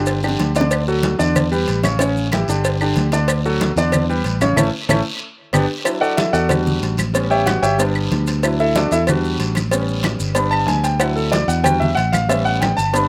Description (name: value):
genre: latin, salsa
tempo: 186 BPM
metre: 4/4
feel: straight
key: D major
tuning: A4 = 445 Hz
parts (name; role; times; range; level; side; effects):
- clear concert grand piano; accompaniment; 0.0-13.1 s; C#3 to B5; -21 LUFS; equal; none
- fingered electric bass; bass; 0.0-13.1 s; G1 to E2; -23 LUFS; equal; none
- congas; percussion; 0.1-13.1 s; none; -26 LUFS; equal; none
- cowbell and bongos; percussion; 0.1-13.1 s; none; -27 LUFS; equal; none
- guiro; percussion; 0.1-13.1 s; none; -34 LUFS; equal; none
- maracas; percussion; 0.1-13.1 s; none; -33 LUFS; equal; none
- claves; percussion; 0.2-12.8 s; none; -28 LUFS; equal; slapback echo
room: little or no reverb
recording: recorded outdoors, with no room sound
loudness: -18 LUFS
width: mono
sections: 0.0-5.9 A section; 5.9-13.1 B section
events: drum fill 0.0-0.7, 5.1-5.9; band accent 4.6-5.9; grand piano solo 5.9-13.1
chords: 0.1 G5; 0.7 Dadd9; 1.4 Em7; 2.0 A7; 2.6 G5; 3.3 Dadd9; 3.9 Em7; 4.6 A; 5.2 G; 5.9 Dadd9; 6.5 Em7; 7.1 A7; 7.8 G; 8.4 Dadd9; 9.1 Em7; 9.7 A7; 10.4 G; 11.0 Dadd9; 11.7 Em7; 12.3 A7